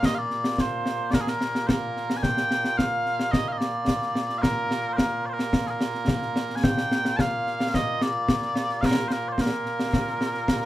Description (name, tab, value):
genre	scottish traditional, Scottish pipe music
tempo	109 BPM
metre	4/4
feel	straight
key	Bb major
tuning	A4 = 441 Hz
part	mellow small bagpipes	melody	0.0-10.7 s	Bb2 to A5	-26 LUFS	right 1 dB	none
part	concert snare drum and concert bass drum	drums	0.0-10.7 s	none	-25 LUFS	equal	none
room	moderate studio ambience, RT60 0.5 s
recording	band playing live in one room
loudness	-23 LUFS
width	side -14 dB against mid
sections	0.0-2.2 A section; 2.2-10.7 B section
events	none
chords	none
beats	| 0.03 0.58 1.13 1.68 | 2.23 2.78 3.33 3.88 | 4.43 4.98 5.53 6.08 | 6.63 7.19 7.74 8.29 | 8.84 9.39 9.94 10.49